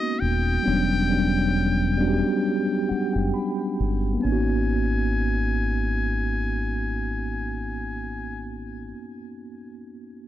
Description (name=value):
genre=R&B, neo-soul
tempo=67 BPM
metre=4/4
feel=swing 56% on 16ths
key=unclear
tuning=A4 = 445 Hz
part: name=trumpet with metal mute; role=melody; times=0.0-8.6 s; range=D#5 to G#5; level=-30 LUFS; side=left 3 dB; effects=tape echo
part: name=mellow tine electric piano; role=accompaniment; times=0.0-10.3 s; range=F#3 to B5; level=-25 LUFS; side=equal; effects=medium stereo tremolo
part: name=deep dub fingered electric bass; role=bass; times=0.2-8.9 s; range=D#1 to G#1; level=-26 LUFS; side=equal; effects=none
room=light reverb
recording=dry, close 1970s-style studio recording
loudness=-22 LUFS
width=side -12 dB against mid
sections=0.0-4.2 A section; 4.2-7.8 B section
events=tine electric piano fill 2.4-4.2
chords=0.0 G#m9; 0.6 Em9; 4.2 G#m9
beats=| 0.65 1.54 2.44 3.33 | 4.23 5.12 6.02 6.92